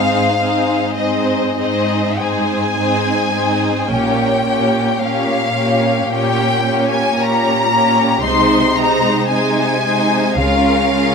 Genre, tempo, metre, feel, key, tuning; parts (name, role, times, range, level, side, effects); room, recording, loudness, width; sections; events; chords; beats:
classical, slow romantic movement for string orchestra; 47-57 BPM; 4/4; rubato; Ab major; A4 = 439 Hz
rich studio violin section; melody; 0.0-11.1 s; Eb5 to C6; -18 LUFS; left 3 dB
rich studio violin section; second line; 0.0-11.1 s; Eb4 to Db5; -21 LUFS; left 3 dB
warm studio viola section; accompaniment; 0.0-11.1 s; Ab3 to Eb4; -18 LUFS; right 1 dB
rich studio cello section; bass; 0.0-11.1 s; Ab2 to Db3; -21 LUFS; right 4 dB
rich studio double bass section; bass; 0.0-11.1 s; Ab1 to Db2; -26 LUFS; right 2 dB
moderate scoring stage reverb, RT60 1.6 s; close, detailed microphones; -13 LUFS; side -5 dB against mid
0.0-11.1 A section
0.0 Ab; 3.9 Gdim/Bb; 8.2 Ab/C; 10.4 Bbm7/Db
0.40 1.58 2.77 | 3.89 5.00 6.07 7.15 | 8.22 9.28 10.36